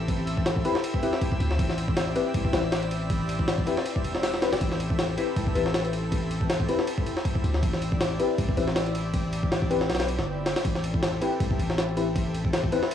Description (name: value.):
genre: drum and bass, jungle.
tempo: 159 BPM.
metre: 4/4.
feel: swing 55% on 16ths.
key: A minor.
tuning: A4 = 440 Hz.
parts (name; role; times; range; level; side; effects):
lush unison pad; sustained chords; 0.0-12.9 s; C4 to D5; -34 LUFS; equal; chorus, vintage 12-bit sampler grit.
long sustained 808-style bass; bass; 0.0-12.7 s; E1 to D2; -29 LUFS; equal; none.
drifting glass-harmonics texture; texture; 0.0-10.7 s; E6; -41 LUFS; right 3 dB; chorus, built-in reverb.
jungle sampler-style drum kit; drums; 0.1-12.9 s; hi-hat, kick drum, ride cymbal, snare drum; -27 LUFS; equal; overdrive.
deep mellow chord stab; stabs; 0.6-12.8 s; C4 to B4; -30 LUFS; left 4 dB; chorus, phaser, dub echo.
room: light reverb, digital ambience.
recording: home recording on cassette, studio reverb.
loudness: -24 LUFS.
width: side -9 dB against mid.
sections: 0.0-10.6 A section; 10.6-12.9 A section.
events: drop 0.0-10.6, 10.6-12.9.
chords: 0.0 Am7.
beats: | 0.08 0.46 0.84 1.21 | 1.59 1.97 2.35 2.72 | 3.10 3.48 3.85 4.23 | 4.61 4.99 5.36 5.74 | 6.12 6.50 6.87 7.25 | 7.63 8.01 8.38 8.76 | 9.14 9.52 9.89 10.27 | 10.65 11.02 11.40 11.78 | 12.16 12.53 12.91.